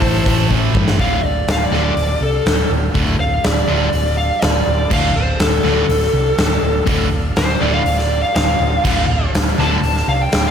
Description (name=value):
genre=hard rock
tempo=122 BPM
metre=4/4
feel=straight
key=D minor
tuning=A4 = 441 Hz
part: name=smooth overdriven lead guitar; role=melody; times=0.0-10.5 s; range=A4 to A5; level=-20 LUFS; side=equal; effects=slapback echo
part: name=octave-fuzz lead guitar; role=second line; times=0.0-0.5 s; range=A4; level=-28 LUFS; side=right 1 dB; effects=distortion, slapback echo
part: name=tonewheel organ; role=sustained chords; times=0.0-10.5 s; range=A3 to F5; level=-30 LUFS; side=equal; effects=none
part: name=distorted electric guitar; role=riff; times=0.0-9.8 s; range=D2 to A3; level=-23 LUFS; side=left 8 dB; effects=overdrive
part: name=distorted electric guitar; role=riff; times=0.0-9.8 s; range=D2 to A3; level=-25 LUFS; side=right 10 dB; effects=distortion, slapback echo
part: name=hollow-body short-scale picked electric bass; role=bass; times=0.0-10.5 s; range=D1 to G2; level=-19 LUFS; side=equal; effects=none
part: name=huge arena drum kit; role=drums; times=0.0-10.4 s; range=crash cymbal, hi-hat, kick drum, snare drum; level=-19 LUFS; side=equal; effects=none
room=moderate lush hall reverb, RT60 1.9 s, small room ambience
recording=big arena sound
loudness=-14 LUFS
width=side -8 dB against mid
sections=1.0-10.5 A section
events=drum fill 0.5-1.0; lead electric guitar solo 1.0-10.5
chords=0.0 Am; 1.0 Dm